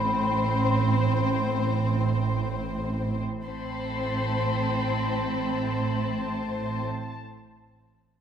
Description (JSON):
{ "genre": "cinematic, suspense film score", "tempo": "free time", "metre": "none", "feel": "none", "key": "A minor", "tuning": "A4 = 440 Hz", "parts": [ { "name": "muted studio violin section", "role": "second line", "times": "0.0-6.8 s", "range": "C4 to C5", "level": "-29 LUFS", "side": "left 2 dB", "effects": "none" }, { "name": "muted studio cello section", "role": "bass", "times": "0.0-6.8 s", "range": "A2", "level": "-32 LUFS", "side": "right 3 dB", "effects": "none" }, { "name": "muted studio double bass section", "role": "bass", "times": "0.0-6.8 s", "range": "A1", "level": "-29 LUFS", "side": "right 4 dB", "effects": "none" }, { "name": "vibraphone with soft mallets", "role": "texture", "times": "0.0-3.5 s", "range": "B5", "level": "-33 LUFS", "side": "left 2 dB", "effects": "none" }, { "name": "muted studio violin section", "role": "texture", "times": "3.4-7.2 s", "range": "A5 to C6", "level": "-35 LUFS", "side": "left 5 dB", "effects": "none" } ], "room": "moderate scoring stage reverb, RT60 1.6 s", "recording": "none", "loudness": "-24 LUFS", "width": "side -8 dB against mid", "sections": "0.0-3.4 A section; 3.4-7.7 B section", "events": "none", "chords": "0.0 Am" }